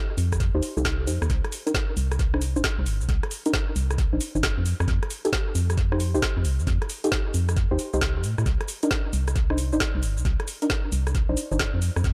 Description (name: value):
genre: UK garage, two-step garage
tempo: 134 BPM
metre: 4/4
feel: swing 65% on 16ths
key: C dorian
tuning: A4 = 441 Hz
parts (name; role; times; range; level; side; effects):
- organ-like FM bass; bass; 0.2-12.1 s; G1 to A2; -27 LUFS; equal; none
- garage drum kit; drums; 0.2-12.1 s; cabasa, hi-hat, rim click, snare drum; -32 LUFS; equal; tape echo
- electronic kick drum; drums; 0.3-12.1 s; none; -29 LUFS; equal; none
- deep mellow chord stab; stabs; 0.5-11.6 s; D4 to C5; -31 LUFS; equal; chorus, dub echo
room: light reverb, digital ambience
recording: echo-heavy mix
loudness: -25 LUFS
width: mono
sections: 0.0-12.1 A section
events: filter sweep on synth stab 0.0-12.1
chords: 0.0 F7; 1.3 Cm; 4.7 F7(no3); 8.5 Cm